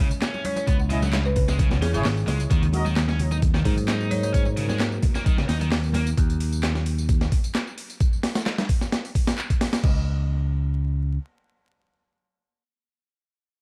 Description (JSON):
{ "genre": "breakbeat, breaks", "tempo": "131 BPM", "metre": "4/4", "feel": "straight", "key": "unclear", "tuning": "A4 = 442 Hz", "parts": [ { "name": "deep dark ambient pad", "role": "sustained chords", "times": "0.0-6.1 s", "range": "F#3 to C#5", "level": "-37 LUFS", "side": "equal", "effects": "chorus, built-in reverb, sidechain pumping" }, { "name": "scooped high-gain guitar", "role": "riff", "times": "0.0-6.1 s", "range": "B2 to D#4", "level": "-34 LUFS", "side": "equal", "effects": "distortion, tape echo" }, { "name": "breakbeat sampler-style drum kit", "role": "drums", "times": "0.1-9.9 s", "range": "crash cymbal, hi-hat, kick drum, snare drum", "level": "-26 LUFS", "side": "equal", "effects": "studio reverb" }, { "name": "garage drum kit", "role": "drums", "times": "0.1-9.8 s", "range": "handclaps, hi-hat, tambourine", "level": "-38 LUFS", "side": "equal", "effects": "overdrive, studio reverb" }, { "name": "congas", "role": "percussion", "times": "0.3-6.0 s", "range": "none", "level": "-36 LUFS", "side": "equal", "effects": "none" }, { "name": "folk marimba with hard mallets", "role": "melody", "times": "0.5-4.3 s", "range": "G#4 to C#5", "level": "-34 LUFS", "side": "equal", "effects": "small speaker sound, tape echo" }, { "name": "picked electric bass", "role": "bass", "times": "0.7-11.2 s", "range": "G#1 to G#2", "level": "-26 LUFS", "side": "equal", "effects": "none" }, { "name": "clear brass ensemble", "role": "stabs", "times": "0.9-2.9 s", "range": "E4 to D#5", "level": "-35 LUFS", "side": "equal", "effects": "vintage 12-bit sampler grit, tape echo" } ], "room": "little or no reverb", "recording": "dark, warm production, vinyl crackle", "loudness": "-23 LUFS", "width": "mono", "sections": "0.0-9.8 A section; 9.8-13.5 B section", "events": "drop 0.0-9.8", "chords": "0.0 C#m; 2.5 D#m; 9.8 N.C." }